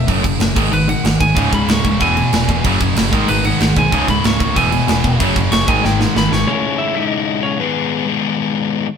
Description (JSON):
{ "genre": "punk rock", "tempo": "188 BPM", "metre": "4/4", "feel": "straight", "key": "C# minor", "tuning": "A4 = 441 Hz", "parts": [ { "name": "lightly driven lead guitar", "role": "melody", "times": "0.0-8.1 s", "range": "B3 to C#6", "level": "-20 LUFS", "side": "right 1 dB", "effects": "none" }, { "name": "distorted electric guitar", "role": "riff", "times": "0.0-6.5 s", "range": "C#2 to G#3", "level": "-21 LUFS", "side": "right 9 dB", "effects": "overdrive" }, { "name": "sludgy distorted guitar", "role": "riff", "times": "0.0-8.9 s", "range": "C#2 to G#4", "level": "-19 LUFS", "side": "left 7 dB", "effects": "overdrive" }, { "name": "overdriven picked electric bass", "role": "bass", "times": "0.0-6.4 s", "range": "C#1 to B1", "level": "-21 LUFS", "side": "equal", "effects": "none" }, { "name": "tight metal drum kit", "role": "drums", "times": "0.1-6.4 s", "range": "crash cymbal, kick drum, snare drum", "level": "-18 LUFS", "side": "right 1 dB", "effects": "none" }, { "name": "heavy high-gain guitar", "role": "riff", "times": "1.4-6.5 s", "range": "C#2 to G#3", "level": "-21 LUFS", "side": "right 1 dB", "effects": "distortion" } ], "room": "light reverb", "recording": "band playing live in one room", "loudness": "-13 LUFS", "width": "side -7 dB against mid", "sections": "0.0-6.5 A section; 6.5-9.0 B section", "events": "lead electric guitar solo 0.0-6.5; drum fill 5.8-6.5", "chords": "0.1 F#5; 0.6 G#5; 1.4 C#5; 2.0 E; 2.6 F#5; 3.1 G#m; 3.9 C#5; 4.6 E; 5.2 F#5; 5.7 G#5; 6.5 C#m; 7.6 G#m" }